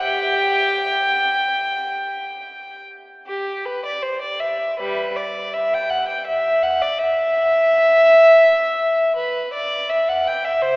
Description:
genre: classical, baroque-style suite movement for unaccompanied violin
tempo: 74-84 BPM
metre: 4/4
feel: rubato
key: E minor from 3.3 s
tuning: A4 = 440 Hz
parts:
  - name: warm violin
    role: solo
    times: 0.0-10.8 s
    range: G3 to G5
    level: -16 LUFS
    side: equal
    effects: none
room: wet cathedral reverb, RT60 5.8 s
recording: recorded in a church or concert hall, AM radio sound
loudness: -16 LUFS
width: side -25 dB against mid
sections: 0.0-3.3 A section; 3.3-10.8 A section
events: none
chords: none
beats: | 0.07 0.88 1.69 2.48 | 3.27 4.04 4.79 5.53 | 6.26 6.99 7.71 8.44 | 9.16 9.90 10.62

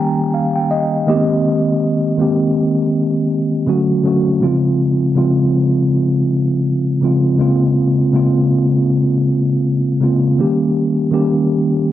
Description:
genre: soul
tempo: 81 BPM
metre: 4/4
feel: swing 58% on 16ths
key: Bb dorian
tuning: A4 = 439 Hz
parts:
  - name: mellow tine electric piano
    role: solo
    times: 0.0-11.9 s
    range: Db3 to Bb5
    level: -13 LUFS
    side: equal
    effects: medium stereo tremolo
room: moderate studio reverb, RT60 0.5 s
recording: home recording on cassette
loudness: -13 LUFS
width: side -12 dB against mid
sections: 0.0-11.9 A section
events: tine electric piano fill 0.0-1.4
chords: 0.0 Eb7; 1.1 Abmaj9; 3.7 Dmaj7; 4.4 Dbmaj7; 7.4 Bbm9; 10.4 Eb7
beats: 0.70 | 1.45 2.19 2.94 3.68 | 4.43 5.17 5.92 6.66 | 7.41 8.15 8.90 9.64 | 10.39 11.13 11.88

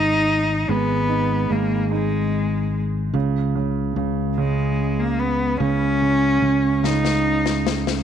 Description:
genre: six-eight pop ballad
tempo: 49 BPM (dotted quarters)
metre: 6/8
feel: straight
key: G# minor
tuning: A4 = 440 Hz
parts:
  - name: warm cello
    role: melody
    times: 0.0-7.8 s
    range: G#3 to D#4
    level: -21 LUFS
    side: left 1 dB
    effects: none
  - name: clear upright piano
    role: accompaniment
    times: 0.0-8.0 s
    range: C#3 to D#4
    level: -25 LUFS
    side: right 10 dB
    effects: none
  - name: fingered electric bass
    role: bass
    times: 0.0-8.0 s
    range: G#1 to C#2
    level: -23 LUFS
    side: left 2 dB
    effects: none
  - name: snare drum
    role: drums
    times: 6.8-8.0 s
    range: none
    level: -25 LUFS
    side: left 11 dB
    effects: none
room: light reverb, small room ambience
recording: 1960s-style stereo with parts hard left and right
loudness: -18 LUFS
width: side -9 dB against mid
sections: 0.0-8.0 A section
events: drum fill 6.8-8.0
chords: 0.0 G#m; 3.1 N.C.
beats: | 0.69 1.92 | 3.15 4.38 | 5.61 6.83

